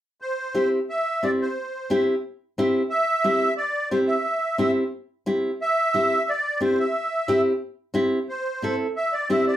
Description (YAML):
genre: latin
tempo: 179 BPM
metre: 4/4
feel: straight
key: C major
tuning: A4 = 440 Hz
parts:
  - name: musette accordion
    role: melody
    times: 0.2-9.6 s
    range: C5 to E5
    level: -23 LUFS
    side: right 1 dB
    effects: none
  - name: nylon-string guitar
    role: accompaniment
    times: 0.5-9.5 s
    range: C4 to A4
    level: -22 LUFS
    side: equal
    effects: none
room: wet studio reverb, RT60 0.5 s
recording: heard from further back in the room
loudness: -21 LUFS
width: side -12 dB against mid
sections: 0.2-9.6 A section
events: none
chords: 0.2 C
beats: | 0.22 0.56 0.90 1.23 | 1.57 1.91 2.24 2.58 | 2.92 3.25 3.59 3.92 | 4.26 4.60 4.93 5.27 | 5.60 5.94 6.28 6.61 | 6.95 7.28 7.62 7.95 | 8.29 8.62 8.96 9.29